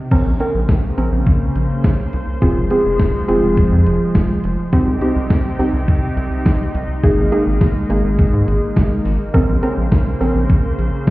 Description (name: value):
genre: synth-pop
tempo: 104 BPM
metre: 4/4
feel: straight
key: unclear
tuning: A4 = 435 Hz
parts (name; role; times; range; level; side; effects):
- soft round pluck; accompaniment; 0.1-10.8 s; Bb3 to Bb4; -20 LUFS; right 1 dB; chorus, shimmer reverb
- lush unison pad; sustained chords; 0.1-11.1 s; C3 to C5; -21 LUFS; equal; chorus, shimmer reverb
- rubbery square bass; bass; 0.1-11.1 s; F1 to Ab2; -18 LUFS; equal; none
- clean 12-bit digital drum machine; drums; 0.1-11.1 s; crash cymbal, hi-hat, kick drum, snare drum; -16 LUFS; equal; none
room: moderate lush hall reverb, RT60 3.0 s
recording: heard muffled through a wall, stone room reverb, EQ, nothing above 7.6 kHz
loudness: -14 LUFS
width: side -18 dB against mid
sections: 0.1-11.1 A section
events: none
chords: 0.1 Bbmadd9; 2.4 Fm; 4.7 Cm; 7.0 Absus2; 9.3 Bbmadd9